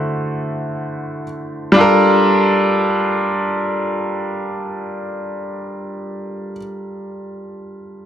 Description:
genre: R&B.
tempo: free time.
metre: none.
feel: none.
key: G dorian.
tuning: A4 = 441 Hz.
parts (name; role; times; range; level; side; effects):
bright grand piano; accompaniment; 0.0-8.1 s; D3 to C5; -17 LUFS; equal; none.
room: moderate plate reverb, RT60 2.1 s.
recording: dense, heavily limited modern master.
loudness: -15 LUFS.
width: side -9 dB against mid.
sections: 0.0-1.8 A section; 1.8-5.6 B section.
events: none.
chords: 0.0 D9; 1.8 Gm9.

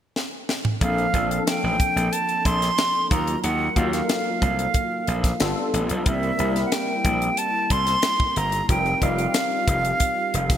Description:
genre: polished 1980s jazz-funk pop.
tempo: 91 BPM.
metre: 4/4.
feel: straight.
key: Bb major.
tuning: A4 = 440 Hz.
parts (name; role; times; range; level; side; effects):
tight funk drum kit; drums; 0.2-10.6 s; hi-hat, kick drum, snare drum, toms; -24 LUFS; equal; none.
breathy silver concert flute; melody; 0.8-10.6 s; E5 to C6; -24 LUFS; right 2 dB; none.
barky tine electric piano; accompaniment; 0.8-10.6 s; F3 to Bb4; -27 LUFS; left 2 dB; overdrive, ensemble chorus.
gritty slap bass; bass; 0.8-10.6 s; F1 to Eb2; -25 LUFS; equal; overdrive.
room: moderate lush hall reverb, RT60 1.7 s.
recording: bright 1980s-style digital production.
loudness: -20 LUFS.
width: side -10 dB against mid.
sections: 0.8-10.6 A section.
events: drum fill 0.2-0.8.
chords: 0.0 N.C.; 0.8 Bbmaj9; 3.1 Ebmadd9; 5.4 G9; 6.1 C7; 8.7 F9sus4.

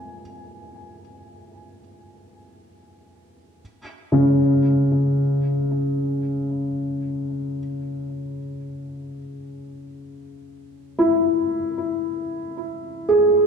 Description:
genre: ambient.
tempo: free time.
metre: none.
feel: none.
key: unclear.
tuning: A4 = 442 Hz.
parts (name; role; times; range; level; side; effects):
felt-muted upright piano; solo; 0.0-13.5 s; C#3 to G#5; -20 LUFS; equal; ping-pong delay.
room: wet concert hall reverb, RT60 2.4 s.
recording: dark, warm production.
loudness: -20 LUFS.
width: side -6 dB against mid.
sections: 0.0-3.6 A section; 3.6-13.5 A section.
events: none.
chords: 0.0 N.C.; 3.6 C#m.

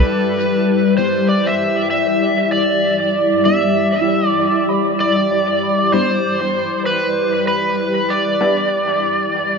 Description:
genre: ambient.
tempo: 97 BPM.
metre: 4/4.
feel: swing 58% on 16ths.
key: E minor.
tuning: A4 = 440 Hz.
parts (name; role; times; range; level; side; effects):
overdriven slide guitar; melody; 0.0-9.6 s; B4 to E5; -17 LUFS; equal; dub echo.
granular cloud pad; sustained chords; 0.0-9.6 s; G3 to D5; -19 LUFS; left 2 dB; built-in reverb.
soft synth bell; arpeggios; 0.0-0.1, 4.0-9.6 s; E4 to B5; -28 LUFS; right 4 dB; chorus, phaser, vintage 12-bit sampler grit, low-pass filter, dub echo.
bubbling stepped-filter texture; texture; 0.0-9.6 s; D5; -26 LUFS; right 2 dB; chorus, built-in reverb.
filtered dub chord stab; stabs; 1.0-8.5 s; G3 to E4; -24 LUFS; left 2 dB; chorus, dub echo.
room: wet spring reverb, RT60 1.4 s, digital ambience.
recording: nothing above 7.6 kHz.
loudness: -14 LUFS.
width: side -5 dB against mid.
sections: 0.1-9.6 A section.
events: filter sweep on ambient pad 0.1-9.6; filter sweep on synth stab 0.1-9.6; filter sweep on synth bell 0.1-9.6.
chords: 0.1 Em7.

